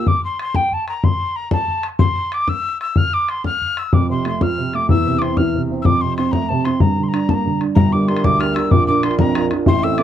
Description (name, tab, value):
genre	celtic folk, Celtic jig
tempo	125 BPM (dotted quarters)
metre	6/8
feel	straight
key	G dorian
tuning	A4 = 441 Hz
part	breathy mellow mid whistle	melody	0.0-10.0 s	G5 to F6	-21 LUFS	left 2 dB	none
part	dark upright piano	accompaniment	0.0, 3.9-10.0 s	G1 to Bb4	-17 LUFS	right 3 dB	none
part	bodhran	percussion	0.1-10.0 s	none	-19 LUFS	left 2 dB	none
room	moderate small room reverb, RT60 0.5 s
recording	dark, warm production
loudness	-15 LUFS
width	side -10 dB against mid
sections	0.1-7.8 A section; 7.8-10.0 B section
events	none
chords	0.1 N.C.; 3.9 F; 4.9 Dm9/E (rootless); 5.9 F; 6.8 Gm; 8.7 Bb